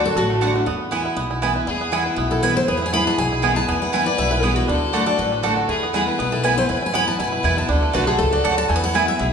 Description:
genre	bluegrass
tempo	239 BPM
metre	4/4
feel	swing 54% on 8ths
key	E mixolydian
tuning	A4 = 440 Hz
part	picked steel-string acoustic guitar	melody	0.0-9.3 s	F#4 to B5	-23 LUFS	left 2 dB	none
part	picked steel-string acoustic guitar	accompaniment	0.0-9.3 s	E2 to F#4	-24 LUFS	left 2 dB	none
part	bluegrass banjo	arpeggios	0.0-9.3 s	E3 to A4	-26 LUFS	right 5 dB	none
part	upright bass	bass	0.0-9.3 s	A1 to F#2	-26 LUFS	equal	none
part	mandolin	stabs	0.4-9.0 s	A3 to G#5	-24 LUFS	right 4 dB	none
part	clear fiddle	second line	1.7-9.3 s	E4 to B4	-26 LUFS	left 3 dB	none
room	wet recital hall reverb, RT60 1.6 s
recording	recorded in a church or concert hall, nothing above 10.9 kHz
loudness	-17 LUFS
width	side -6 dB against mid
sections	0.0-1.7 A section; 1.7-9.3 B section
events	none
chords	0.0 D; 0.7 E; 4.7 D; 5.7 E; 7.7 D; 8.7 E

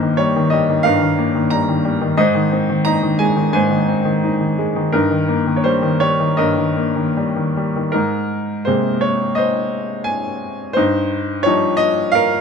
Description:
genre	classical, lyrical solo piano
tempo	74-90 BPM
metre	4/4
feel	rubato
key	Ab major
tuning	A4 = 440 Hz
part	bright upright piano	solo	0.0-12.4 s	G2 to Bb5	-15 LUFS	equal	none
room	light reverb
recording	close, detailed microphones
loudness	-15 LUFS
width	side -6 dB against mid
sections	0.0-7.9 A section; 7.9-12.4 A section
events	none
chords	0.0 Ebadd9/G; 2.2 Ab; 4.9 Eb/G; 7.9 Abadd9; 10.8 Ebadd9/G

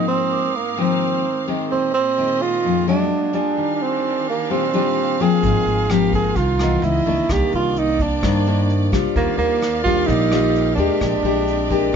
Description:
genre	bossa nova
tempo	129 BPM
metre	4/4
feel	straight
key	Eb major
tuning	A4 = 445 Hz
part	breathy tenor saxophone	melody	0.0-12.0 s	Bb3 to Ab4	-20 LUFS	right 5 dB	plate reverb
part	nylon-string guitar	accompaniment	0.0-12.0 s	F2 to G4	-21 LUFS	left 6 dB	none
part	vibraphone with medium mallets	accompaniment	0.0-12.0 s	G4 to Eb6	-29 LUFS	right 3 dB	none
part	clear studio string section	sustained chords	0.0-12.0 s	Ab2 to F5	-29 LUFS	right 1 dB	none
part	upright bass	bass	5.4-12.0 s	Ab1 to G2	-22 LUFS	equal	none
part	vintage brush drum kit	drums	5.4-11.8 s	hi-hat, kick drum, rim click	-26 LUFS	equal	none
room	light reverb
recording	nothing above 7.6 kHz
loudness	-16 LUFS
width	side -7 dB against mid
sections	0.0-12.0 A section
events	none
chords	0.0 Ab69; 1.7 Bb9sus4; 3.1 Bb7b13; 3.6 Ebmaj9; 5.4 Ab69; 6.8 Dbm9; 7.3 Cm9; 9.1 Ebmaj9; 11.0 Bb13

